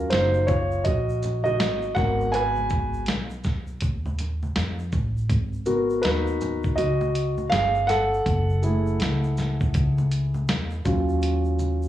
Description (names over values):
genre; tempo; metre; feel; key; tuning
hip hop, jazz-hop; 81 BPM; 4/4; swing 62% on 16ths; G# dorian; A4 = 439 Hz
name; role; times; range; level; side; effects
dark grand piano; accompaniment; 0.0-11.9 s; F#3 to G#5; -24 LUFS; equal; none
upright bass; bass; 0.0-11.9 s; F#1 to E#2; -26 LUFS; equal; none
dusty soul sampler-style drum kit; drums; 0.1-11.8 s; hi-hat, kick drum, shaker, snare drum; -27 LUFS; equal; none
egg shaker and congas; percussion; 0.1-11.9 s; none; -36 LUFS; equal; none
room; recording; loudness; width
small room ambience; dry, gritty hardware recording, cassette tape, small room reverb; -21 LUFS; side -12 dB against mid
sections
0.0-5.3 A section; 5.3-11.9 B section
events
grand piano solo 0.0-5.3, 5.3-11.9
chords
0.0 D#m9; 2.0 G#m7; 5.3 G#m9; 8.3 F#m9; 10.9 D#m9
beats
0.12 0.86 1.60 | 2.34 3.08 3.82 4.56 | 5.30 6.04 6.78 7.52 | 8.26 9.00 9.74 10.49 | 11.23